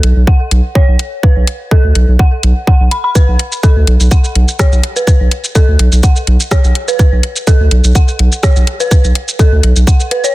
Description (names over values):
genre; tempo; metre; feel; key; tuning
minimal techno; 125 BPM; 4/4; swing 54% on 16ths; B minor; A4 = 440 Hz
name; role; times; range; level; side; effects
saturated sub bass; bass; 0.0-9.8 s; B1 to D2; -9 LUFS; equal; sidechain pumping
garage drum kit; drums; 0.0-10.3 s; hi-hat, rim click, shaker; -18 LUFS; equal; none
dark detuned synth bell; riff; 0.3-10.3 s; A4 to B5; -18 LUFS; right 1 dB; chorus, sidechain pumping, digital delay
electronic kick drum; drums; 0.3-10.0 s; none; -8 LUFS; equal; none
room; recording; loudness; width
little or no reverb; dense, heavily limited modern master; -8 LUFS; side -18 dB against mid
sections
0.0-10.3 A section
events
none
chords
none